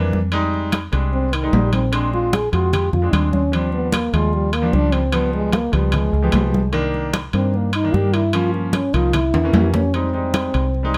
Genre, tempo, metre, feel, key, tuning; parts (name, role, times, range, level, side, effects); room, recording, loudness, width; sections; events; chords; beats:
Afro-Cuban jazz; 150 BPM; 4/4; straight; C minor; A4 = 441 Hz
warm grand piano; accompaniment; 0.0-11.0 s; Eb3 to G4; -26 LUFS; equal
fingered electric bass; bass; 0.0-11.0 s; Bb1 to G2; -23 LUFS; equal
congas; percussion; 0.1-11.0 s; -26 LUFS; equal
timbales; percussion; 0.3-11.0 s; -28 LUFS; equal
mellow French horn; melody; 1.1-11.0 s; Eb3 to Ab4; -24 LUFS; equal
light reverb; -19 LUFS; mono
0.0-9.9 A section; 9.9-11.0 A section
French horn solo 0.0-11.0; drum fill 9.3-9.9
0.3 Fm7; 1.9 Bb7; 3.5 Ebmaj7; 5.1 Db7#11; 6.7 Cm7; 8.3 Gm7b5; 9.1 C7b9; 9.9 Fm9
| 0.32 0.73 1.13 1.53 | 1.93 2.33 2.73 3.13 | 3.53 3.94 4.34 4.74 | 5.14 5.54 5.94 6.34 | 6.74 7.14 7.54 7.94 | 8.34 8.74 9.14 9.54 | 9.94 10.34 10.74